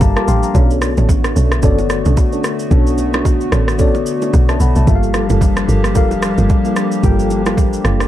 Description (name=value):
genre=amapiano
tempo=111 BPM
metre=4/4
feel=swing 58% on 16ths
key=unclear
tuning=A4 = 439 Hz
part: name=mellow tine electric piano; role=accompaniment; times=0.0-8.1 s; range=G3 to D6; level=-19 LUFS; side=left 6 dB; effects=wide subtle chorus
part: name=hollow soft pad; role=sustained chords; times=0.0-8.1 s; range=D3 to G4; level=-22 LUFS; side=equal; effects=chorus, sidechain pumping
part: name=woody log drum bass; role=bass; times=0.0-8.1 s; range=F1 to B1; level=-16 LUFS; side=equal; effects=none
part: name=smooth R&B drum kit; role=drums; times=0.0-8.1 s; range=kick drum, rim click, shaker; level=-16 LUFS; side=equal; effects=overdrive
part: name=bongos and congas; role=percussion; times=0.0-7.7 s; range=none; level=-26 LUFS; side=right 6 dB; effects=none
part: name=percussive tonewheel organ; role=stabs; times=0.2-8.0 s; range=Bb3 to A4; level=-23 LUFS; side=right 5 dB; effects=chorus vibrato, slow rotary speaker, ping-pong delay
room=digital ambience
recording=dark, warm production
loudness=-12 LUFS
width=side -13 dB against mid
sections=0.0-8.1 A section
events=tine electric piano fill 0.0-0.5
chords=0.0 Gm9; 0.5 Bm9; 4.9 Gm9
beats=0.01 | 0.55 1.09 1.63 2.17 | 2.71 3.25 3.79 4.33 | 4.87 5.41 5.95 6.50 | 7.04 7.58